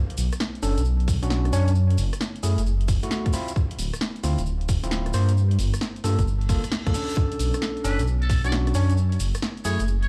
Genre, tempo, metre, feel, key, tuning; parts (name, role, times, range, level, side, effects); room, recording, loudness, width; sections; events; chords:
UK garage, two-step garage; 133 BPM; 4/4; swing 66% on 16ths; B minor; A4 = 440 Hz
punchy analog drum machine; drums; 0.1-10.1 s; hi-hat, rim click, snare drum; -34 LUFS; equal
dark detuned saw bass; bass; 0.2-10.1 s; D1 to G2; -25 LUFS; equal; tube saturation
cabasa; percussion; 0.2-10.0 s; -41 LUFS; equal
overdriven tine electric piano; stabs; 0.6-9.8 s; A3 to C#5; -33 LUFS; equal; delay
electronic kick drum; drums; 1.1-8.4 s; -27 LUFS; equal
reverse cymbal; sound effects; 6.4-7.2 s; -40 LUFS; equal
trumpet with metal mute; melody; 7.8-10.1 s; A4 to D5; -35 LUFS; equal; delay
light reverb; played on a big sound system in a bare room, large studio reverb; -24 LUFS; mono
0.0-10.1 A section
reverse cymbal 6.4-7.2
0.0 Bm; 1.8 F#m7; 3.3 Dm7; 5.1 Gm7; 7.2 Bm7; 9.0 F#m7